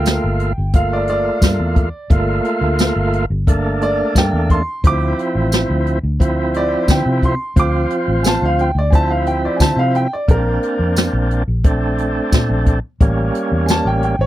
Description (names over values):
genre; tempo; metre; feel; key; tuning
straight-eighth soul blues; 88 BPM; 4/4; straight; D minor; A4 = 438 Hz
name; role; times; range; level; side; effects
dark upright piano; second line; 0.0-14.3 s; Bb4 to D6; -21 LUFS; right 1 dB; none
overdriven tonewheel organ; accompaniment; 0.0-14.2 s; F3 to F4; -19 LUFS; right 1 dB; slow rotary speaker
vintage muted fingered electric bass; bass; 0.0-14.3 s; G1 to D3; -18 LUFS; equal; none
jazz brush drum kit; drums; 0.1-14.2 s; hi-hat, kick drum, snare drum, tambourine; -14 LUFS; equal; none
room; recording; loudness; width
little or no reverb; dry, close 1970s-style studio recording; -14 LUFS; side -14 dB against mid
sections
0.0-14.3 A section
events
upright piano solo 0.0-14.3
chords
0.0 Gm7; 4.8 Dm7; 10.3 Bbmaj7; 13.0 A7b9